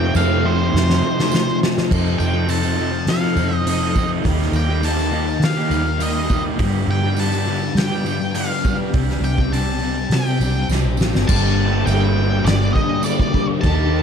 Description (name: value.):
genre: rock, shoegaze and dream pop.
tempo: 102 BPM.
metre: 4/4.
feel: straight.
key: G minor.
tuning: A4 = 440 Hz.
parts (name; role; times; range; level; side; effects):
octave-fuzz lead guitar; melody; 0.0-14.0 s; C5 to A5; -25 LUFS; left 1 dB; distortion, digital delay.
granular cloud pad; sustained chords; 0.0-14.0 s; A3 to G5; -29 LUFS; left 1 dB; built-in reverb.
fuzz guitar; riff; 0.0-14.0 s; F2 to Eb4; -23 LUFS; left 11 dB; distortion, ensemble chorus.
raw garage guitar; riff; 0.0-14.0 s; F2 to A4; -25 LUFS; right 12 dB; overdrive, reverse reverb.
vintage muted fingered electric bass; bass; 0.0-14.0 s; G1 to G3; -20 LUFS; right 1 dB; none.
tambourine; percussion; 0.1-13.2 s; none; -38 LUFS; right 17 dB; none.
loose indie drum kit; drums; 0.2-13.8 s; crash cymbal, hi-hat, kick drum, snare drum; -23 LUFS; right 1 dB; none.
room: light reverb, small room ambience.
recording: dark, warm production.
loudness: -16 LUFS.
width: side -7 dB against mid.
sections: 0.0-1.9 A section; 1.9-11.3 B section; 11.3-14.0 A section.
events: drum fill 0.7-1.9, 10.7-11.3.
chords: 0.0 F7; 4.2 Ebadd9; 6.6 G7; 8.9 Csus2; 11.3 Gm.